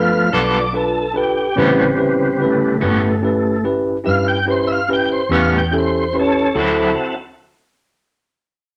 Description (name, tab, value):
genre	slow blues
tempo	48 BPM (dotted quarters)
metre	12/8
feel	straight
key	unclear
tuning	A4 = 439 Hz
part	tine electric piano	accompaniment	0.0-6.9 s	C4 to B4	-21 LUFS	equal	none
part	tonewheel organ	sustained chords	0.0-7.2 s	C#3 to G5	-21 LUFS	equal	slow rotary speaker, chorus vibrato
part	vintage muted fingered electric bass	bass	0.0-6.9 s	G1 to G2	-27 LUFS	equal	none
part	electric guitar at the edge of break-up	accompaniment	0.3-6.9 s	A2 to A4	-22 LUFS	equal	tremolo
room	moderate studio reverb, RT60 0.7 s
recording	none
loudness	-17 LUFS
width	mono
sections	0.0-6.6 A section; 6.6-8.8 B section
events	tonewheel organ solo 0.0-6.6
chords	0.0 G9; 1.6 A9; 6.6 D9